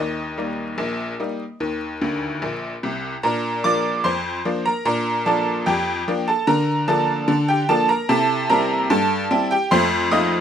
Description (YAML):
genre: ragtime piano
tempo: 74 BPM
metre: 2/4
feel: straight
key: Eb major, Bb major from 3.2 s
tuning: A4 = 440 Hz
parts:
  - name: tack piano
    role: solo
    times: 0.0-10.4 s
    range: Bb1 to Eb6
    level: -18 LUFS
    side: equal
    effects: none
room: moderate studio ambience, RT60 0.5 s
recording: minimal, uncompressed stereo recording, vinyl crackle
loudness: -18 LUFS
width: side -8 dB against mid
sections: 0.0-3.2 A section; 3.2-10.4 B section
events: honky-tonk piano fill 2.0-3.2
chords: 0.0 Eb; 3.2 Bb; 6.5 Bb/D; 8.1 C7; 9.7 F7